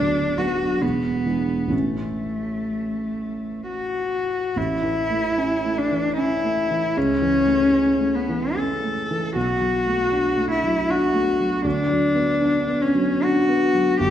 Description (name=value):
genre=classical, romantic duo for cello and grand piano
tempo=57-80 BPM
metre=3/4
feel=rubato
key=A major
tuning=A4 = 438 Hz
part: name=warm cello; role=melody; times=0.0-14.1 s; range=A3 to A4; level=-21 LUFS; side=left 2 dB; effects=none
part: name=dark concert grand piano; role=accompaniment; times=0.0-14.1 s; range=D1 to D4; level=-24 LUFS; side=right 1 dB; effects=none
room=wet recital hall reverb, RT60 1.6 s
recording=recorded in a church or concert hall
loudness=-19 LUFS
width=side -10 dB against mid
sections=0.0-4.6 A section; 4.6-14.1 B section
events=none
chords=0.0 Bm/D; 0.8 E7; 1.7 A; 7.0 A/C#; 9.4 Bm7; 11.7 Bm/D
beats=0.82 | 1.73 2.66 3.67 | 4.57 5.37 6.18 | 6.96 7.73 8.57 | 9.36 10.12 10.89 | 11.65 12.41 13.23 | 14.01